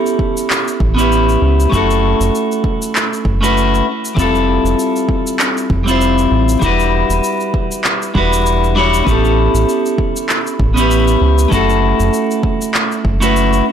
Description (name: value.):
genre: sunset chillout.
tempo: 98 BPM.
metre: 4/4.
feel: swing 55% on 16ths.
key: unclear.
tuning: A4 = 440 Hz.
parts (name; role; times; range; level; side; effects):
clean electric guitar; accompaniment; 0.0-13.7 s; G3 to C#5; -14 LUFS; moving between left 4 dB and right 4 dB; auto-pan, digital delay.
electronic shaker and handclaps; drums; 0.1-13.6 s; none; -20 LUFS; equal; overdrive.
electronic kick drum; drums; 0.2-13.2 s; none; -18 LUFS; equal; overdrive.
round analog bass; bass; 0.8-13.6 s; E1 to C#2; -15 LUFS; right 1 dB; none.
room: moderate plate reverb, RT60 2.5 s.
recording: blown-out, overdriven recording, overdrive.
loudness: -12 LUFS.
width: side -8 dB against mid.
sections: 0.0-13.7 A section.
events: none.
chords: 0.0 A7; 1.7 F#m7; 3.9 Fmaj7; 6.6 Em7; 9.1 A7; 11.5 F#m7.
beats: 0.50 1.11 | 1.72 2.34 2.95 3.56 | 4.17 4.79 5.40 6.01 | 6.62 7.23 7.85 8.46 | 9.07 9.68 10.29 10.91 | 11.52 12.13 12.74 13.36.